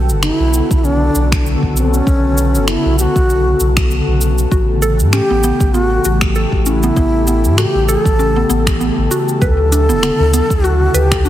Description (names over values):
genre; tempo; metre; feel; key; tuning
organic downtempo; 98 BPM; 4/4; swing 56% on 16ths; B minor; A4 = 440 Hz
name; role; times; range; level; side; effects
airy breathy pad; sustained chords; 0.0-11.3 s; C#3 to A4; -20 LUFS; left 2 dB; chorus, sidechain pumping
warm sub bass; bass; 0.0-11.3 s; D1 to A2; -16 LUFS; equal; sidechain pumping
deep house drum kit; drums; 0.1-11.3 s; finger snaps, hi-hat, shaker; -21 LUFS; equal; none
breathy bass bansuri; melody; 0.2-11.3 s; C#4 to B4; -18 LUFS; equal; ping-pong delay
electronic kick drum; drums; 0.7-11.2 s; none; -16 LUFS; equal; none
mallet-like synth pluck; arpeggios; 4.5-11.3 s; B3 to B4; -20 LUFS; equal; chorus, digital delay
room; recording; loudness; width
light reverb; heavily compressed radio sound; -11 LUFS; side -12 dB against mid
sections
0.0-11.3 A section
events
none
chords
0.0 Bm9; 4.5 A7; 9.4 Dmaj9